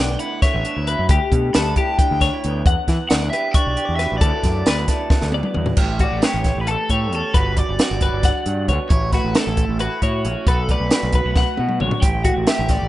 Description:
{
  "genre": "math rock and midwest emo",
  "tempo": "268 BPM (eighths)",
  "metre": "7/8",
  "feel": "straight",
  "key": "D major",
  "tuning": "A4 = 440 Hz",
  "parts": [
    { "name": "crunchy overdriven guitar", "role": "melody", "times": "0.0-12.9 s", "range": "F#4 to B5", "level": "-26 LUFS", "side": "equal", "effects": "phaser, slapback echo" },
    { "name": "electric guitar through a small old amp", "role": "accompaniment", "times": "0.0-12.9 s", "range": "D2 to G4", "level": "-27 LUFS", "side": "right 6 dB", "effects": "none" },
    { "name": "twelve-string electric guitar", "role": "arpeggios", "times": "0.0-12.9 s", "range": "F#4 to C#6", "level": "-24 LUFS", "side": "left 5 dB", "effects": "none" },
    { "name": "growling fingered electric bass", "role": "bass", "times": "0.0-12.9 s", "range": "G1 to E3", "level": "-22 LUFS", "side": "equal", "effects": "overdrive" },
    { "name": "compact cocktail drum kit", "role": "drums", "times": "0.2-12.8 s", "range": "crash cymbal, hi-hat, kick drum, snare drum, toms", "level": "-19 LUFS", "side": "equal", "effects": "none" }
  ],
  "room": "light reverb, small room ambience",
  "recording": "rough home demo mix, nothing above 10.7 kHz",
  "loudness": "-16 LUFS",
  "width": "side -15 dB against mid",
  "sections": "0.0-5.8 A section; 5.8-12.9 B section",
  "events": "drum fill 5.1-5.8, 11.4-12.0",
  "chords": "0.0 D69; 1.1 G6/D; 2.7 Em9; 4.2 D69; 5.8 A7; 7.4 Gmaj7; 8.9 F#m7/A; 10.5 Bm7; 12.0 A7(no3)",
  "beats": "0.20 0.42 0.64 0.87 | 1.09 1.32 1.54 1.76 1.99 2.21 2.44 | 2.66 2.88 3.11 3.33 3.55 3.78 4.00 | 4.22 4.45 4.67 4.89 5.12 5.34 5.57 | 5.79 6.01 6.24 6.46 6.68 6.91 7.13 | 7.35 7.58 7.80 8.02 8.25 8.47 8.69 | 8.92 9.14 9.36 9.59 9.81 10.03 10.25 | 10.48 10.70 10.92 11.14 11.37 11.59 11.81 | 12.03 12.26 12.48 12.70"
}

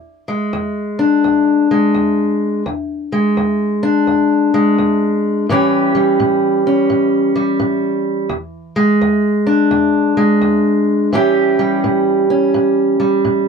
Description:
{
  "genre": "blues",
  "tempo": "85 BPM",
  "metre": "4/4",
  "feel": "swing 64% on 8ths",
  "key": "A mixolydian",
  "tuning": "A4 = 441 Hz",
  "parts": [
    { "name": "fingerpicked steel-string acoustic guitar", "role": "solo", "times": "0.0-13.5 s", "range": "E2 to G4", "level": "-13 LUFS", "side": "equal", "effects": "none" }
  ],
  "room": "wet booth ambience, RT60 0.2 s",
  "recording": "heard from further back in the room",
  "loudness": "-13 LUFS",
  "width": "side -5 dB against mid",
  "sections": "0.0-11.1 A section; 11.1-13.5 A section",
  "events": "none",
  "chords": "0.0 E7; 5.5 A7; 8.3 E7; 11.1 A7",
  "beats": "0.53 1.24 1.95 | 2.65 3.36 4.07 4.77 | 5.48 6.19 6.89 7.60 | 8.30 9.01 9.72 10.42 | 11.13 11.84 12.54 13.25"
}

